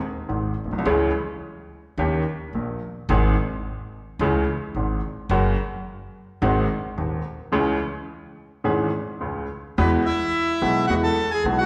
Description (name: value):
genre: tango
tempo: 108 BPM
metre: 4/4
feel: rubato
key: C# harmonic minor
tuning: A4 = 445 Hz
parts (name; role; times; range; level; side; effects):
- clear baby grand piano; accompaniment; 0.3-11.7 s; D#1 to G#4; -26 LUFS; equal; none
- upright bass; bass; 0.3-11.7 s; F#1 to E2; -30 LUFS; equal; none
- bandoneon; melody; 9.8-11.7 s; B3 to A5; -24 LUFS; equal; none
room: wet recital hall reverb, RT60 1.7 s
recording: recorded in a church or concert hall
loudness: -24 LUFS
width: mono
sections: 0.0-9.8 A section; 9.8-11.7 B section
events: none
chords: 0.0 G#; 0.9 C#m; 2.0 D#7; 3.1 G#; 4.2 C#m; 5.3 F#; 6.4 G#7; 7.5 C#m; 9.8 Eadd9